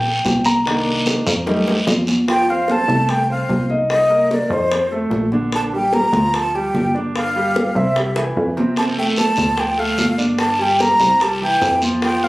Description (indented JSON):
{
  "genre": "Afro-Cuban jazz",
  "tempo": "148 BPM",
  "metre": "4/4",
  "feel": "straight",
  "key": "F major",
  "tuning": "A4 = 440 Hz",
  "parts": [
    { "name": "warm concert grand piano", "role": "accompaniment", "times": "0.0-12.3 s", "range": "C3 to Bb5", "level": "-22 LUFS", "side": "equal", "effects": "none" },
    { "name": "plucky analog bass", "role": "bass", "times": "0.0-12.3 s", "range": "G1 to F2", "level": "-23 LUFS", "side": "equal", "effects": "none" },
    { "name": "bongos", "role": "percussion", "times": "0.1-12.3 s", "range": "none", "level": "-26 LUFS", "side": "left 1 dB", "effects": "none" },
    { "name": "congas", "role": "percussion", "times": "0.1-12.3 s", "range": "none", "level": "-23 LUFS", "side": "equal", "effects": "none" },
    { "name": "guiro", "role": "percussion", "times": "0.2-2.3, 8.8-12.3 s", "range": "none", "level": "-25 LUFS", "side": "equal", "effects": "none" },
    { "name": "breathy mellow silver concert flute", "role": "melody", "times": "2.3-12.3 s", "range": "C5 to Bb5", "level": "-17 LUFS", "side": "equal", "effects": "plate reverb" }
  ],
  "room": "moderate studio reverb, RT60 0.9 s",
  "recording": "recorded on a phone in the room, club reverb, compression",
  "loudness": "-15 LUFS",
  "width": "side -19 dB against mid",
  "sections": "0.0-2.3 A section; 2.3-12.3 B section",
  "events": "grand piano solo 0.0-2.3; drum fill 1.5-2.3, 8.2-8.8",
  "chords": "0.0 Eb6 (rootless); 0.7 Cm7; 1.5 F7; 2.3 F; 3.9 Cm7; 4.7 F; 5.5 Bb6; 7.1 G5; 8.0 C; 8.8 F6; 9.6 Dm; 10.4 Gm; 11.2 C"
}